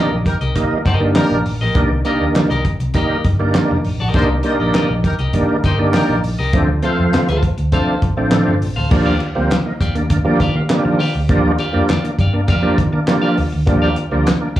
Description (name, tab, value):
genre	funk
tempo	101 BPM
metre	4/4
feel	straight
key	unclear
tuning	A4 = 441 Hz
part	clean electric guitar	accompaniment	0.0-14.6 s	G4 to F5	-24 LUFS	left 3 dB	slapback echo
part	overdriven tonewheel organ	stabs	0.0-14.5 s	Eb3 to F4	-17 LUFS	right 1 dB	chorus vibrato, slow rotary speaker, slapback echo
part	vintage muted fingered electric bass	bass	0.1-14.6 s	F1 to Eb3	-19 LUFS	equal	none
part	warm horn section	second line	0.3-6.2 s	Eb4 to Eb5	-24 LUFS	equal	slapback echo
part	damped 70s drum kit	drums	0.3-14.6 s	crash cymbal, handclaps, hi-hat, kick drum, snare drum	-19 LUFS	equal	slapback echo
room	moderate club reverb, RT60 0.6 s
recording	live gig heard through the venue's PA, club reverb, small room ambience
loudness	-14 LUFS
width	side -13 dB against mid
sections	0.0-8.9 A section; 8.9-14.6 B section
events	none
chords	0.0 Cm7; 6.5 Dm7; 8.9 Ebmaj9